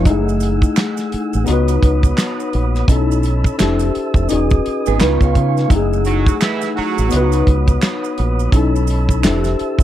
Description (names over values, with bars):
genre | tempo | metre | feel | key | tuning
R&B, neo-soul | 85 BPM | 4/4 | swing 60% on 16ths | F# dorian | A4 = 435 Hz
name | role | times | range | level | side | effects
electric guitar through a small old amp | second line | 0.0, 4.9-5.7 s | B3 to C#5 | -22 LUFS | right 20 dB | spring reverb
tine electric piano | accompaniment | 0.0-9.8 s | G#3 to B4 | -19 LUFS | left 5 dB | overdrive, analog chorus
mellow tonewheel organ | sustained chords | 0.0-9.8 s | A3 to E6 | -26 LUFS | right 4 dB | fast rotary speaker
deep dub fingered electric bass | bass | 0.0-9.8 s | E1 to C#3 | -17 LUFS | right 1 dB | none
warm soul drum kit | drums | 0.1-9.8 s | handclaps, hi-hat, kick drum, snare drum | -16 LUFS | equal | none
maracas and finger snaps | percussion | 0.1-9.8 s | none | -31 LUFS | right 25 dB | none
warm horn section | stabs | 6.1-7.4 s | E3 to F#4 | -22 LUFS | right 8 dB | none
room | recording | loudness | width
little or no reverb | dry, close 1970s-style studio recording | -14 LUFS | side -12 dB against mid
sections
0.0-9.8 A section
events
none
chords
0.1 F#m9; 1.5 C#9sus4; 2.9 B9sus4; 3.6 Fmaj7; 4.3 Emaj7; 5.0 C#7; 5.7 F#m9; 7.1 C#9sus4; 8.5 B9sus4; 9.2 Fmaj7